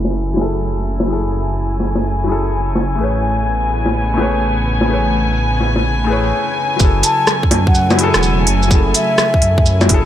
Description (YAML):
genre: future garage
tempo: 126 BPM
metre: 4/4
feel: swing 65% on 16ths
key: F# minor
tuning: A4 = 441 Hz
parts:
  - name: felt-muted upright piano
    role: accompaniment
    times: 0.0-10.1 s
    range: F#3 to C#5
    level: -21 LUFS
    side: left 4 dB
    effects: sidechain pumping, tape echo
  - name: warm chamber string section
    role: sustained chords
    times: 0.0-10.1 s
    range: C#3 to G#5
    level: -20 LUFS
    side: equal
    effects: sidechain pumping
  - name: swelling detuned saw bass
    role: bass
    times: 0.0-10.1 s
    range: E1 to F#2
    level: -18 LUFS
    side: equal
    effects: sidechain pumping
  - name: organic electronic drum kit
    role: drums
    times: 0.0-10.0 s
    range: bongos, hi-hat, rim click, shaker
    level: -17 LUFS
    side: equal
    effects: low-pass filter on snare, low-pass filter on perc, low-pass filter on hats, low-pass filter on room
  - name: electronic kick drum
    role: drums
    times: 6.8-10.0 s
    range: none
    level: -14 LUFS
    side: equal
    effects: none
  - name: mellow hollow wooden flute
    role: melody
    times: 7.0-9.6 s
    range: E5 to A5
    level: -19 LUFS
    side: left 1 dB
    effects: tape echo
room: light reverb, studio reverb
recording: low-pass filter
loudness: -13 LUFS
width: side -11 dB against mid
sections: 0.0-6.8 A section; 6.8-10.1 B section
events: filter sweep 0.0-6.8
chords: 0.0 F#m9; 3.0 Amaj9; 6.8 F#m9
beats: 0.14 0.61 | 1.09 1.56 2.04 2.52 | 2.99 3.47 3.94 4.42 | 4.90 5.37 5.85 6.33 | 6.80 7.28 7.75 8.23 | 8.71 9.18 9.66